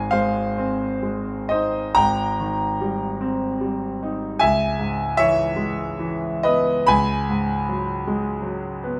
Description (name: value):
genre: classical, impressionist solo piano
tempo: 42-53 BPM (dotted quarters)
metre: 6/8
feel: rubato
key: unclear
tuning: A4 = 440 Hz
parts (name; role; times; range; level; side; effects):
- clear concert grand piano; solo; 0.0-9.0 s; Ab1 to B5; -22 LUFS; equal; none
room: moderate stone room reverb, RT60 1.3 s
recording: none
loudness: -22 LUFS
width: mono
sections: 0.0-9.0 A section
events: none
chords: 0.0 Ab6; 2.0 Cm7/Ab; 4.4 Dbm7; 6.9 Bsus2/C#